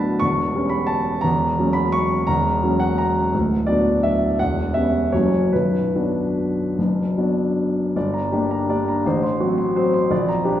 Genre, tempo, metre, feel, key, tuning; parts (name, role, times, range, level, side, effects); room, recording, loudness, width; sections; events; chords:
classical, piano waltz; 140-183 BPM; 3/4; rubato; B minor; A4 = 440 Hz
warm concert grand piano; solo; 0.0-10.6 s; B0 to C#6; -18 LUFS; equal
wet recital hall reverb, RT60 1.8 s; heard from further back in the room; -18 LUFS; side -11 dB against mid
0.0-8.0 A section; 8.0-10.6 B section
0.2 C#m7b5/E; 1.2 F#7/E; 3.3 Bm/D; 4.4 C#m7b5/E; 5.1 F#; 5.5 Bm; 8.0 Gm; 9.0 F#dim/A